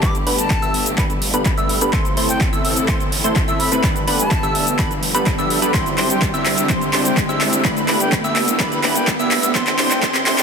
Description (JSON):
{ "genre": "EDM, festival progressive house", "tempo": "126 BPM", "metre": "4/4", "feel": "straight", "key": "G major", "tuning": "A4 = 440 Hz", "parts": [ { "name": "breathy silver concert flute", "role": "melody", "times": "0.0-10.4 s", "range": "G5 to D6", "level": "-28 LUFS", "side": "left 2 dB", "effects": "dub echo" }, { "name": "clear symphonic string section", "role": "sustained chords", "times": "0.0-10.4 s", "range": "C3 to A4", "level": "-28 LUFS", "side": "equal", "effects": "none" }, { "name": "plucky unison lead", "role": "arpeggios", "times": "0.0-10.4 s", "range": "B5 to E6", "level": "-24 LUFS", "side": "equal", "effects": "sidechain pumping, dub echo" }, { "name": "supersaw stab", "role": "riff", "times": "0.0-10.4 s", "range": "A3 to E5", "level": "-22 LUFS", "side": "right 1 dB", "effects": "sidechain pumping, low-pass filter, dub echo" }, { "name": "wide detuned saw bass", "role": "bass", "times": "0.0-10.4 s", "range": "G1 to A2", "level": "-30 LUFS", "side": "equal", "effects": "none" }, { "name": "electronic kick drum", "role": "drums", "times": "0.0-10.1 s", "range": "none", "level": "-21 LUFS", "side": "equal", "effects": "overdrive" }, { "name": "pop drum kit", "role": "drums", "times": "0.0-10.4 s", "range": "handclaps, hi-hat, shaker", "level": "-21 LUFS", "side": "equal", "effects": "overdrive" }, { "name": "riser", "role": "sound effects", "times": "1.9-10.4 s", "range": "none", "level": "-26 LUFS", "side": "equal", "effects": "none" } ], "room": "moderate lush hall reverb, RT60 1.8 s", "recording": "dense, heavily limited modern master, high-pass filter", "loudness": "-15 LUFS", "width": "side -6 dB against mid", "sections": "0.0-10.4 A section", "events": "build-up 0.0-10.4; drum fill 0.0-10.4; filter sweep on supersaw synth 0.0-10.4; filter sweep on digital synth lead 0.0-10.4; filter sweep 0.0-10.4; riser 1.9-10.4", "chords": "0.0 Gadd9; 1.9 Am; 3.8 Gadd9; 5.7 Cadd9; 7.6 Gadd9; 9.6 Am" }